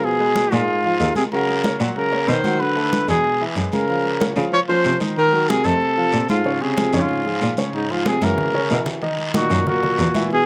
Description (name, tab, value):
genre	Afro-Cuban jazz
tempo	187 BPM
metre	4/4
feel	straight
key	unclear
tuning	A4 = 441 Hz
part	warm trumpet	melody	0.0-10.5 s	Eb4 to Db5	-23 LUFS	equal	slapback echo
part	breathy baritone saxophone	second line	0.0-10.5 s	Ab2 to F3	-26 LUFS	equal	slapback echo
part	warm baby grand piano	accompaniment	0.0-10.4 s	Db3 to Gb5	-28 LUFS	equal	slapback echo
part	congas	percussion	0.0-10.5 s	none	-29 LUFS	equal	none
part	guiro	percussion	0.0-10.5 s	none	-34 LUFS	equal	none
part	clear cello	bass	0.5-10.1 s	Eb2 to Db3	-24 LUFS	equal	none
room	little or no reverb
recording	recorded outdoors, with no room sound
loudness	-19 LUFS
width	mono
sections	0.0-9.0 A section; 9.0-10.5 B section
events	drum fill 8.2-9.0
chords	0.0 Fdim; 0.7 Bb5; 1.3 Ebm7; 2.6 Bm7; 3.2 Eadd9; 3.9 Gbmaj7 (rootless); 5.2 Cm7b5; 5.8 F; 6.5 Bbm9 (rootless); 8.4 Gb7; 9.0 Bmaj7 (rootless)